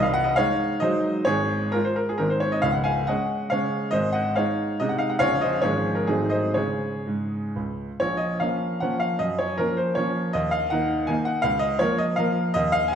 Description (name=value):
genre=classical, romantic triple-time dance for piano with dotted rhythms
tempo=115-173 BPM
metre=3/4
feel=rubato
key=Db major, Bb minor from 8.0 s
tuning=A4 = 440 Hz
part: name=bright baby grand piano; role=solo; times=0.0-12.9 s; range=Bb0 to Ab5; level=-21 LUFS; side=equal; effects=none
room=wet recital hall reverb, RT60 1.5 s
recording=dark, warm production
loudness=-22 LUFS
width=side -8 dB against mid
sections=0.0-8.0 A section; 8.0-12.9 B section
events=none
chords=0.0 Ab7/C; 1.3 Db/Ab; 2.2 Ab; 2.6 Db; 3.9 Ab; 5.2 Bbm; 5.6 Db/Ab; 6.1 Ab7b9; 6.5 Db5; 8.0 Bbm; 9.2 Gbmaj7; 10.3 Ebm; 11.5 Bbm/Db